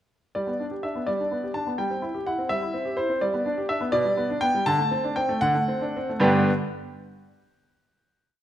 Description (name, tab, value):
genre	classical-period piano sonatina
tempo	71-86 BPM (dotted quarters)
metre	6/8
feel	rubato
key	G major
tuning	A4 = 440 Hz
part	clear concert grand piano	solo	0.3-6.5 s	G2 to A5	-23 LUFS	equal	none
room	wet recital hall reverb, RT60 1.4 s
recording	none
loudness	-23 LUFS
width	side -11 dB against mid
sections	0.4-6.2 A section; 6.2-7.7 final chord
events	none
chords	0.4 G; 1.8 C/G; 3.2 G; 3.9 G/B; 4.7 D5; 6.2 G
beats	| 0.36 1.08 | 1.80 2.50 | 3.22 3.93 | 4.65 5.41 | 6.22